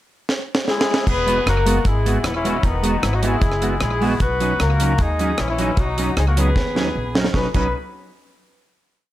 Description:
ska; 153 BPM; 4/4; straight; B major; A4 = 440 Hz
deep reggae drum kit; drums; 0.3-7.6 s; crash cymbal, hi-hat, kick drum, rim click, snare drum; -22 LUFS; equal; slapback echo
warm horn section; melody; 0.7-7.7 s; D#3 to B4; -22 LUFS; left 2 dB; slapback echo
upright bass; bass; 1.1-7.7 s; D#1 to D#2; -22 LUFS; equal
clean electric guitar; accompaniment; 1.3-7.7 s; F#3 to F#4; -24 LUFS; right 3 dB; analog chorus, slapback echo
light reverb, studio reverb; -17 LUFS; side -14 dB against mid
0.0-1.1 pickup bar; 1.1-7.3 head; 7.3-8.9 final chord
drum fill 0.3-1.1, 6.6-7.3
0.0 N.C.; 1.1 Eadd9; 4.2 Badd9
0.29 0.68 | 1.07 1.46 1.86 2.25 | 2.64 3.03 3.42 3.81 | 4.21 4.60 4.99 5.38 | 5.77 6.17 6.56 6.95 | 7.34

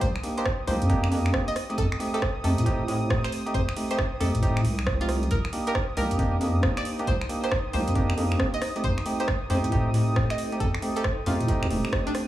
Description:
UK garage, two-step garage; 136 BPM; 4/4; swing 64% on 16ths; A4 = 440 Hz
string-like resonator pluck; melody; 0.0-12.3 s; D4 to Eb5; -34 LUFS; right 1 dB; chorus, phaser, tape echo
warm analog pad; sustained chords; 0.0-12.3 s; Eb6; -39 LUFS; equal; chorus, sidechain pumping
bell-like tine electric piano; stabs; 0.0-12.3 s; A3 to G4; -29 LUFS; right 1 dB; dub echo
deep soft wobble bass; bass; 0.0-11.8 s; F1 to A2; -25 LUFS; equal; chorus
electronic kick drum; drums; 0.0-12.0 s; -27 LUFS; equal; overdrive
garage drum kit; drums; 0.0-12.3 s; finger snaps, hi-hat, rim click; -32 LUFS; right 1 dB; overdrive
granular cloud pad; texture; 6.4-12.3 s; Eb4 to Bb5; -38 LUFS; equal; built-in reverb, sidechain pumping
light reverb, digital ambience; small room reverb; -23 LUFS; side -14 dB against mid
0.0-12.3 A section
0.0 Cm7; 1.6 F9 (rootless); 5.3 Cm7; 8.6 F9
| 0.01 0.46 0.90 1.34 | 1.78 2.22 2.66 3.10 | 3.54 3.98 4.42 4.87 | 5.31 5.75 6.19 6.63 | 7.07 7.51 7.96 8.40 | 8.84 9.28 9.72 10.16 | 10.60 11.04 11.48 11.93

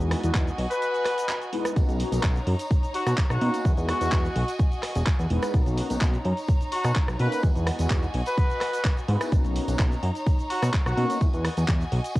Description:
filtered disco house; 127 BPM; 4/4; straight; B major; A4 = 439 Hz
mellow synth brass; accompaniment; 0.0-11.2 s; G#3 to B4; -32 LUFS; left 1 dB; chorus, phaser, sidechain pumping, cassette tape
clear studio violin section; sustained chords; 0.0-12.2 s; D#4 to A#5; -35 LUFS; equal; sidechain pumping, cassette tape
fat analog bass; bass; 0.0-12.0 s; E1 to B2; -26 LUFS; equal; sidechain pumping
house drum kit; drums; 0.0-12.2 s; cabasa, handclaps, hi-hat, rim click; -33 LUFS; equal; sidechain pumping on hats, cassette tape, sidechain pumping on perc
electronic kick drum; drums; 0.3-12.2 s; -23 LUFS; equal; cassette tape
bright horn section; melody; 0.7-11.2 s; F#4 to B4; -29 LUFS; left 1 dB; vintage 12-bit sampler grit, sidechain pumping, analog delay
tambourine; percussion; 1.8-12.2 s; -48 LUFS; left 1 dB; sidechain pumping on perc
light reverb, digital ambience; home recording on cassette; -22 LUFS; side -18 dB against mid
0.0-12.2 A section
0.0 Emaj9; 1.8 Bmaj9; 3.7 Emaj9; 5.5 Bmaj9; 7.4 Emaj9; 9.3 Bmaj9; 11.2 Emaj9
0.34 0.82 1.29 | 1.76 2.23 2.71 3.18 | 3.65 4.12 4.60 5.07 | 5.54 6.01 6.49 6.96 | 7.43 7.90 8.38 8.85 | 9.32 9.79 10.27 10.74 | 11.21 11.68 12.16

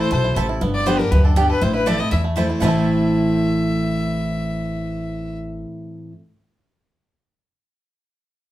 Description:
bluegrass; 240 BPM; 4/4; straight; A minor; A4 = 440 Hz
bluegrass banjo; melody; 0.0-5.7 s; A3 to A4; -28 LUFS; right 3 dB; tape echo
clear fiddle; melody; 0.0-5.4 s; D4 to E5; -26 LUFS; left 2 dB
picked steel-string acoustic guitar; accompaniment; 0.0-6.1 s; E2 to G4; -21 LUFS; equal
upright bass; bass; 0.1-5.6 s; G1 to E2; -23 LUFS; equal
mandolin; stabs; 0.4-6.1 s; A3 to A5; -26 LUFS; right 4 dB
wet studio reverb, RT60 0.6 s; heard from further back in the room; -17 LUFS; side -14 dB against mid
0.6-2.6 A section; 2.6-4.6 B section
0.0 Am; 0.6 G; 1.6 Am
0.12 0.37 | 0.62 0.87 1.12 1.37 | 1.62 1.87 2.12 2.37 | 2.62 2.86 3.11 3.36 | 3.61 3.86 4.11 4.36

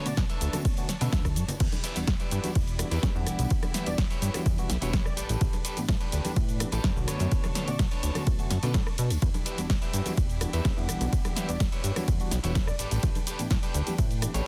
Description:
filtered disco house; 126 BPM; 4/4; straight; E dorian; A4 = 440 Hz
bell-like tine electric piano; accompaniment; 0.0-14.3 s; D3 to F#5; -37 LUFS; equal; phaser, sidechain pumping
clear studio violin section; sustained chords; 0.0-14.5 s; D4 to C#6; -45 LUFS; equal; sidechain pumping
electric guitar at the edge of break-up; riff; 0.0-14.5 s; D4 to E5; -40 LUFS; equal; sidechain pumping
analog synth brass; melody; 0.1-0.2, 3.9-7.8, 11.5-12.9 s; D5; -43 LUFS; equal; chorus, vintage 12-bit sampler grit, sidechain pumping, digital delay
plucky analog bass; bass; 0.1-14.4 s; E1 to C#3; -32 LUFS; equal; tube saturation, sidechain pumping
punchy analog drum machine; drums; 0.1-14.4 s; crash cymbal, hi-hat, ride cymbal, rim click, shaker, snare drum; -36 LUFS; equal; overdrive, sidechain pumping on cymbals, small room reverb, sidechain pumping on perc, sidechain pumping on hats
tambourine and congas; percussion; 0.1-14.4 s; -43 LUFS; equal
electronic kick drum; drums; 0.2-14.1 s; -30 LUFS; equal; overdrive, small room reverb
digital ambience; dense, heavily limited modern master; -28 LUFS; mono
0.0-14.5 A section
0.0 Bm9; 1.6 Em7; 5.2 A9sus4; 7.1 Bm9; 9.2 Em7; 12.8 A9sus4
0.17 0.65 1.13 | 1.60 2.08 2.56 3.03 | 3.51 3.98 4.46 4.94 | 5.41 5.89 6.37 6.84 | 7.32 7.79 8.27 8.75 | 9.22 9.70 10.18 10.65 | 11.13 11.60 12.08 12.56 | 13.03 13.51 13.98 14.46

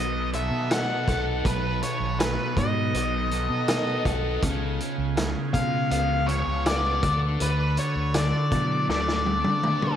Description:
psychedelic rock; 81 BPM; 4/4; straight; A4 = 439 Hz
octave-fuzz lead guitar; melody; 0.0-10.0 s; B4 to F#5; -27 LUFS; left 1 dB; distortion, analog delay
combo organ; sustained chords; 0.0-10.0 s; D#3 to A4; -38 LUFS; right 5 dB
fuzz guitar; riff; 0.0-10.0 s; B2 to A4; -28 LUFS; equal; distortion, phaser, analog delay
fingered electric bass; bass; 0.0-10.0 s; B1 to D3; -28 LUFS; equal
vintage drum kit; drums; 0.3-10.0 s; hi-hat, kick drum, snare drum, toms; -28 LUFS; equal
light reverb; echo-heavy mix; -22 LUFS; side -9 dB against mid
0.0-10.0 A section
drum fill 8.9-10.0
0.0 B7; 4.4 C#7; 7.0 D
0.71 | 1.45 2.20 2.94 3.69 | 4.43 5.17 5.92 6.66 | 7.41 8.15 8.90 9.64

